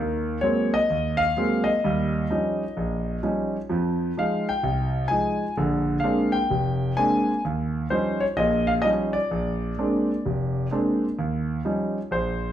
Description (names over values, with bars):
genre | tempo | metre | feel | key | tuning
jazz | 128 BPM | 4/4 | swing 66% on 8ths | unclear | A4 = 439 Hz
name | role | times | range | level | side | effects
warm concert grand piano | solo | 0.0-12.5 s | F1 to Ab5 | -22 LUFS | equal | none
room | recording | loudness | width
wet large studio reverb, RT60 0.9 s | heard from further back in the room | -22 LUFS | side -11 dB against mid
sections
0.0-11.2 A section; 11.2-12.5 A section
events
none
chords
0.0 Ab9; 1.8 Eb9; 3.7 Fm7; 5.6 Bb9; 7.4 Eb9; 9.3 Bb9; 11.2 Eb9